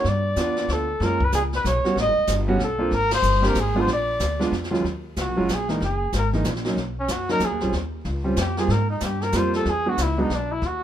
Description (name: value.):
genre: jazz, small-group swing and bop.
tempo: 187 BPM.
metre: 3/4.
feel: swing 62% on 8ths.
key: unclear.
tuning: A4 = 436 Hz.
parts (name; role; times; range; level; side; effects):
trumpet with bucket mute; melody; 0.0-10.8 s; Db4 to Eb5; -24 LUFS; equal; none.
warm grand piano; accompaniment; 0.0-10.3 s; Eb2 to G4; -25 LUFS; right 2 dB; none.
upright bass; bass; 0.0-10.8 s; E1 to Ab2; -26 LUFS; equal; none.
jazz brush drum kit; drums; 0.0-10.8 s; brushed snare drum, hi-hat, kick drum, ride cymbal, snare drum; -30 LUFS; equal; none.
room: light reverb.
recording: minimal, uncompressed stereo recording.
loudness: -20 LUFS.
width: side -10 dB against mid.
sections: 0.0-4.9 A section; 4.9-10.8 B section.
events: band accent 3.1; muted trumpet solo 4.9-10.8.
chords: 0.0 G7; 1.0 Gbmaj9; 2.0 A7sus2; 2.9 Abmaj9#11; 3.9 Bb7; 4.9 Ebm11; 5.8 Gb69; 6.8 B; 7.7 Eb13; 8.7 Abmaj13; 9.7 E9.